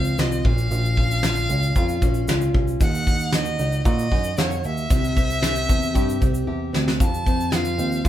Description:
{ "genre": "acoustic pop", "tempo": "114 BPM", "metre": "4/4", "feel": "straight", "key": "Bb minor", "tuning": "A4 = 436 Hz", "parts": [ { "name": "warm violin", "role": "melody", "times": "0.0-8.1 s", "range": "Db5 to A5", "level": "-27 LUFS", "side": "right 1 dB", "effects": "none" }, { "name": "nylon-string guitar", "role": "accompaniment", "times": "0.0-8.1 s", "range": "F2 to G4", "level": "-26 LUFS", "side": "left 1 dB", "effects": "none" }, { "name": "bell-like tine electric piano", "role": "bass", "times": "0.0-8.1 s", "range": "Bb1 to Bb2", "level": "-24 LUFS", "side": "equal", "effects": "none" }, { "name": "soft brush drum kit", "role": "drums", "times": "0.0-8.1 s", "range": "kick drum, shaker, snare drum", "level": "-22 LUFS", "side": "equal", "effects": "none" } ], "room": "moderate small room reverb, RT60 0.6 s", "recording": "band playing live in one room", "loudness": "-19 LUFS", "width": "side -12 dB against mid", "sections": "0.0-8.1 A section", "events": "drum fill 6.5-7.0", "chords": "0.4 Bbm; 2.8 Ebm; 4.9 C; 7.0 F" }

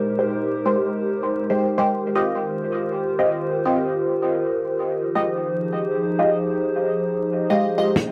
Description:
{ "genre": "drum and bass, jungle", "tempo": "160 BPM", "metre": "4/4", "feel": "straight", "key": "F minor", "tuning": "A4 = 439 Hz", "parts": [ { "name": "warbly tape-like pad", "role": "sustained chords", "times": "0.0-8.1 s", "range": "Eb3 to C5", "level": "-25 LUFS", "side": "equal", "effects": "chorus, built-in reverb, vintage 12-bit sampler grit" }, { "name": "filtered dub chord stab", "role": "stabs", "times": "0.2-7.9 s", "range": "Ab3 to Eb5", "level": "-25 LUFS", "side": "equal", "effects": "phaser, lush chorus, dub echo" }, { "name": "crunchy breakbeat drum kit", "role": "drums", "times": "8.0-8.1 s", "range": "hi-hat, kick drum", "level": "-22 LUFS", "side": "equal", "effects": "high-pass filter on kick, cassette tape, high-pass filter on hats, high-pass filter on snare, high-pass filter on room" } ], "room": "moderate spring reverb, RT60 1.3 s, studio reverb", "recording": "home recording on cassette, vinyl crackle", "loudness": "-22 LUFS", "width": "mono", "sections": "0.0-8.0 A section", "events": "none", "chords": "0.0 Abmaj7; 2.0 Eb69; 5.0 Fm9" }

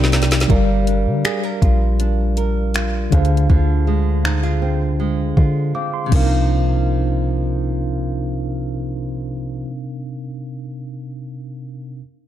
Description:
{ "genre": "contemporary R&B", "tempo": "80 BPM", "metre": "4/4", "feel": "straight", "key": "C minor", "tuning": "A4 = 436 Hz", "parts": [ { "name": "mellow tine electric piano", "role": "accompaniment", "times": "0.0-12.0 s", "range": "C3 to D6", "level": "-22 LUFS", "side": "left 1 dB", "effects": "medium stereo tremolo" }, { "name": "chorused pulse-width pad", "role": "sustained chords", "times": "0.0-0.5 s", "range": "Eb3 to G4", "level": "-31 LUFS", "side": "left 3 dB", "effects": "sidechain pumping" }, { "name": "flamenco guitar", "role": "arpeggios", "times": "0.0-9.8 s", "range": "C3 to Bb4", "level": "-26 LUFS", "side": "right 6 dB", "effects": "ping-pong delay" }, { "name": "soft 808-style bass", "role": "bass", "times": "0.0-9.6 s", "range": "G1 to D3", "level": "-19 LUFS", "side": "equal", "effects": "none" }, { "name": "smooth R&B drum kit", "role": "drums", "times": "0.0-6.3 s", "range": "crash cymbal, finger snaps, hi-hat, kick drum, snare drum", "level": "-18 LUFS", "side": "equal", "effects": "none" } ], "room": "little or no reverb", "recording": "dark, warm production", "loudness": "-16 LUFS", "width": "side -12 dB against mid", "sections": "0.5-6.5 A section; 6.5-9.5 B section", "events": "drum fill 0.0-0.5; silent gap 5.7-6.5", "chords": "0.5 Gm7; 3.1 Dm7b5; 6.1 Cm11" }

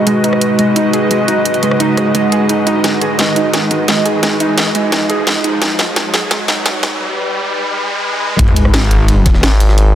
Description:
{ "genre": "dark technical drum and bass", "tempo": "173 BPM", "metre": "4/4", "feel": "straight", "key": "G# minor", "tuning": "A4 = 441 Hz", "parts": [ { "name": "deep dark ambient pad", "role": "sustained chords", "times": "0.0-9.9 s", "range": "G#3 to B4", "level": "-20 LUFS", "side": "right 1 dB", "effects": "chorus, built-in reverb, sidechain pumping" }, { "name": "riser and sub drop", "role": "sound effects", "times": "0.0-9.8 s", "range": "none", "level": "-20 LUFS", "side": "equal", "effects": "none" }, { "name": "airy breathy pad", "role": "texture", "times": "0.0-7.0 s", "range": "G#3 to D#5", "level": "-17 LUFS", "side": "equal", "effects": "chorus, sidechain pumping" }, { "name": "soft round pluck", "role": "arpeggios", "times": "0.1-6.9 s", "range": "G#3 to G#4", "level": "-18 LUFS", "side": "right 2 dB", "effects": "wide subtle chorus, sidechain pumping, digital delay" }, { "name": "drum and bass drum kit", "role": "drums", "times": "0.1-9.8 s", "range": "hi-hat, rim click, snare drum", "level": "-16 LUFS", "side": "equal", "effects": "overdrive, high-pass filter on hats, high-pass filter on snare" }, { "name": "metallic wobble bass", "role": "bass", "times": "8.4-9.4 s", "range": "G#1", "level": "-12 LUFS", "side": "equal", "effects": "distortion, chorus, overdrive" }, { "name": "electronic kick drum", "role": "drums", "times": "8.4-9.3 s", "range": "none", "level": "-11 LUFS", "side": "equal", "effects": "none" }, { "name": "jungle sampler-style drum kit", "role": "drums", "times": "8.4-9.9 s", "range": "hi-hat, ride cymbal, snare drum", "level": "-25 LUFS", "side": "equal", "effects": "high-pass filter on snare, high-pass filter on cymbals, high-pass filter on hats" }, { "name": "growling FM bass", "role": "bass", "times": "9.4-9.9 s", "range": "G#1", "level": "-9 LUFS", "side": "equal", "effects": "none" } ], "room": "moderate lush hall reverb, RT60 1.9 s", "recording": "dense, heavily limited modern master, high-pass filter", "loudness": "-11 LUFS", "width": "side -11 dB against mid", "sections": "0.0-8.4 A section; 8.4-9.9 B section", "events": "build-up 0.0-8.4; riser 0.0-8.4; filter sweep 0.0-8.4; drum fill 2.8-7.0; break 7.0-8.4; drop 8.4-9.9; impact 8.4-9.8", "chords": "0.0 G#m; 8.4 G#5" }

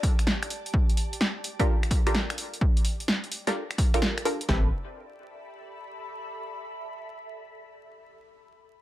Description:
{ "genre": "UK garage, two-step garage", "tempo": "128 BPM", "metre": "4/4", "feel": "swing 66% on 16ths", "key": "unclear", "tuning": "A4 = 440 Hz", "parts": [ { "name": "punchy analog drum machine", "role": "drums", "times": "0.0-4.6 s", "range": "kick drum, snare drum", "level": "-24 LUFS", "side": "equal", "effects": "overdrive" }, { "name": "punchy analog drum machine", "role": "drums", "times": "0.0-4.5 s", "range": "finger snaps, hi-hat, snare drum", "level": "-28 LUFS", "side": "equal", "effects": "overdrive" }, { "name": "ethereal airy pad", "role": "texture", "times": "0.0-6.3 s", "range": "G4 to B5", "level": "-42 LUFS", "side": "left 1 dB", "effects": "ensemble chorus, built-in reverb, phaser, sidechain pumping" }, { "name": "punchy chord stab", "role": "stabs", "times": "1.6-4.7 s", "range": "C4 to B4", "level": "-30 LUFS", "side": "equal", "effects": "chorus, phaser, dub echo" }, { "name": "saturated sub bass", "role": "bass", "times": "4.5-4.7 s", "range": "A1", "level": "-25 LUFS", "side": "equal", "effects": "none" } ], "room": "digital ambience", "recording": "vinyl crackle", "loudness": "-24 LUFS", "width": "side -14 dB against mid", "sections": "0.0-4.5 A section; 4.5-6.4 B section", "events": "fade-out on ambient pad 0.0-4.5", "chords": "0.0 Gm9; 4.5 Asus2" }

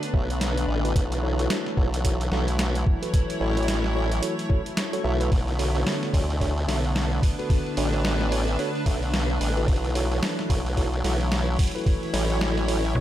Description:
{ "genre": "glitch hop", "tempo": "110 BPM", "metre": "4/4", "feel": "swing 60% on 16ths", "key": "B minor", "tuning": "A4 = 441 Hz", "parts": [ { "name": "warm analog pad", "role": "sustained chords", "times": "0.0-13.0 s", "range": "D3 to B3", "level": "-32 LUFS", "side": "left 1 dB", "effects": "chorus, sidechain pumping" }, { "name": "boom bap sampler-style drum kit", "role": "drums", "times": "0.0-12.9 s", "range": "hi-hat, snare drum", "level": "-31 LUFS", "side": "equal", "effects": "none" }, { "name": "downlifter", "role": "sound effects", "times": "0.0-1.0 s", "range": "none", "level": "barely audible", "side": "none", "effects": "none" }, { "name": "granular cloud pad", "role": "texture", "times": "0.0-13.0 s", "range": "D4 to C#5", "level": "-33 LUFS", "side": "equal", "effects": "built-in reverb, sidechain pumping" }, { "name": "mellow tine electric piano", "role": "stabs", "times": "0.1-13.0 s", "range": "D4 to F#5", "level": "-31 LUFS", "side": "equal", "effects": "fast stereo tremolo, sidechain pumping, tape echo" }, { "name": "formant-sweep wobble bass", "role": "bass", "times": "0.1-12.9 s", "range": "A1 to D2", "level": "-25 LUFS", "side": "equal", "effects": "chorus" }, { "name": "electronic kick drum", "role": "drums", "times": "0.1-12.0 s", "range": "none", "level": "-23 LUFS", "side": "equal", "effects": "none" }, { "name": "slap-like FM bass", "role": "bass", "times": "13.0 s", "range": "B1", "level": "-21 LUFS", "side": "equal", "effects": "none" } ], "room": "little or no reverb", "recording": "echo-heavy mix", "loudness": "-22 LUFS", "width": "side -12 dB against mid", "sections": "0.0-13.0 A section", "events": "none", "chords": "0.0 Bm7; 1.0 F#m7/B; 5.3 Bm7; 9.7 F#m7/B" }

